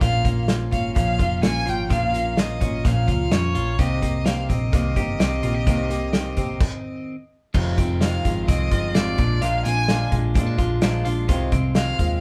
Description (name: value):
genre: jangly indie pop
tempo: 128 BPM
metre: 4/4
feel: straight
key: F minor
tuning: A4 = 439 Hz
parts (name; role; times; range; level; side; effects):
- rich violin; melody; 0.0-12.2 s; Db5 to Ab5; -30 LUFS; equal; none
- picked steel-string acoustic guitar; accompaniment; 0.0-12.2 s; F2 to G4; -31 LUFS; equal; none
- clean electric guitar; arpeggios; 0.0-12.2 s; F2 to G4; -30 LUFS; equal; phaser
- hollow-body short-scale picked electric bass; bass; 0.0-12.2 s; F1 to Bb2; -27 LUFS; equal; none
- loose indie drum kit; drums; 0.0-12.1 s; crash cymbal, hi-hat, kick drum, snare drum; -25 LUFS; equal; none
room: moderate studio ambience, RT60 0.5 s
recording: band playing live in one room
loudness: -22 LUFS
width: mono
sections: 0.0-7.5 A section; 7.5-12.2 B section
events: stop 6.6-7.5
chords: 0.0 Bbm; 3.8 Cm7; 7.5 Fm7; 9.2 Bb7; 11.3 Fm7/C